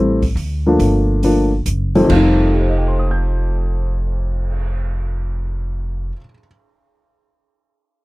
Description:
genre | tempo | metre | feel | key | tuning
jazz piano trio | 139 BPM | 3/4 | swing 67% on 8ths | F mixolydian | A4 = 444 Hz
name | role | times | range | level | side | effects
dark upright piano | melody | 0.0-6.4 s | F2 to G6 | -16 LUFS | left 1 dB | none
upright bass | bass | 0.0-6.1 s | F1 to D2 | -18 LUFS | equal | none
open jazz drum kit | drums | 0.2-4.6 s | crash cymbal, cymbal swell, hi-hat, kick drum | -27 LUFS | right 1 dB | none
room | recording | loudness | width
little or no reverb | dry, close 1970s-style studio recording | -15 LUFS | side -21 dB against mid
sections
0.0-2.1 A section; 2.1-4.7 B section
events
none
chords
0.4 D5; 0.8 Gm7; 1.7 F#dim7; 2.1 F7

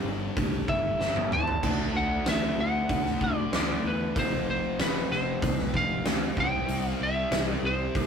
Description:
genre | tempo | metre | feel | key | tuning
hard rock | 95 BPM | 4/4 | straight | unclear | A4 = 440 Hz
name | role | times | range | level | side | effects
lightly driven lead guitar | melody | 0.0-8.1 s | B4 to A5 | -30 LUFS | equal | analog delay
crunchy overdriven guitar | riff | 0.0-8.1 s | F2 to D4 | -37 LUFS | right 4 dB | none
distorted electric guitar | riff | 0.0-8.1 s | F2 to D4 | -35 LUFS | left 4 dB | distortion
picked electric bass | bass | 0.0-8.1 s | F1 to E2 | -34 LUFS | equal | none
huge arena drum kit | drums | 0.4-8.1 s | crash cymbal, hi-hat, kick drum, snare drum, toms | -29 LUFS | equal | none
raw garage guitar | riff | 1.6-8.1 s | C3 to F#4 | -36 LUFS | left 1 dB | overdrive
room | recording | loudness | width
moderate small room reverb, RT60 0.6 s | rough rehearsal-room recording, tube saturation | -25 LUFS | side -7 dB against mid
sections
0.0-8.1 A section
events
drum fill 1.0-1.6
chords
0.0 G5; 1.6 D; 4.2 F; 6.4 C

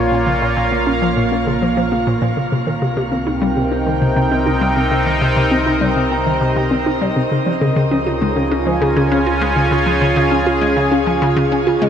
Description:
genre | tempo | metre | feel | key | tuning
ambient, sequencer-driven space music | 100 BPM | 4/4 | straight | unclear | A4 = 441 Hz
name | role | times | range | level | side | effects
sweeping resonant pad | sustained chords | 0.0-11.9 s | Bb2 to Ab5 | -16 LUFS | right 1 dB | chorus
round analog bass | bass | 0.0-11.9 s | Bb1 to Db2 | -26 LUFS | equal | none
hollow square pluck | riff | 0.1-11.9 s | Bb2 to F4 | -18 LUFS | left 1 dB | chorus, cassette tape, tape echo
room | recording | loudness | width
wet shimmer reverb, RT60 9.4 s | none | -14 LUFS | side -8 dB against mid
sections
0.0-11.9 A section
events
filter sweep on synth arpeggio sound 0.0-11.9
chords
0.0 Bbm; 2.5 Cm7; 7.3 Db

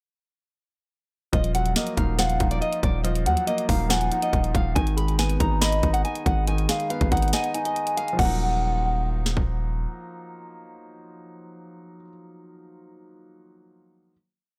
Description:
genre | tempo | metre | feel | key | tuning
hip hop, trap | 140 BPM | 4/4 | half-time | Eb minor | A4 = 440 Hz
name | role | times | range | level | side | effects
nylon-string guitar | melody | 1.3-9.4 s | D5 to Cb6 | -31 LUFS | equal | low-pass filter
dark baby grand piano | accompaniment | 1.3-14.1 s | Eb3 to Eb5 | -34 LUFS | equal | low-pass filter
long sustained 808-style bass | bass | 1.3-9.9 s | Eb1 to Eb2 | -27 LUFS | equal | none
trap drum kit | drums | 1.3-9.5 s | crash cymbal, hi-hat, kick drum, snare drum | -28 LUFS | equal | none
hollow clarinet-like synth lead | second line | 2.2-9.4 s | Eb5 to Ab5 | -32 LUFS | equal | chorus, tape echo
room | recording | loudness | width
little or no reverb | dry, gritty hardware recording | -24 LUFS | mono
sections
1.3-8.2 hook; 8.2-11.6 final chord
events
break 7.3-8.2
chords
1.3 Ebmadd9; 4.8 Abm; 8.2 Ebmadd9

